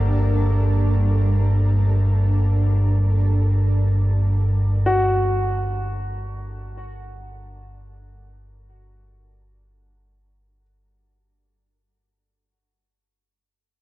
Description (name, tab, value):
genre	dark ambient drone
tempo	free time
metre	none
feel	none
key	G harmonic minor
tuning	A4 = 440 Hz
part	granular cloud pad	sustained chords	0.0-10.6 s	G3 to Bb4	-30 LUFS	right 1 dB	built-in reverb
part	clear concert grand piano	arpeggios	0.0-12.5 s	F#4	-28 LUFS	left 1 dB	tape echo
part	deep rumbling drone	drone	0.0-10.7 s	G1 to G2	-19 LUFS	equal	built-in reverb, wide subtle chorus
part	bronze singing bowl	texture	0.0-10.6 s	Bb3	-39 LUFS	right 2 dB	none
room	moderate huge ambient reverb, RT60 7.7 s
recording	worn, warbling old tape, cassette tape, warbly pitch drift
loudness	-17 LUFS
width	side -16 dB against mid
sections	0.0-10.6 A section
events	fade-out on ambient pad 0.0-10.6; fade-out 0.0-10.6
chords	0.0 Gmadd9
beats	free time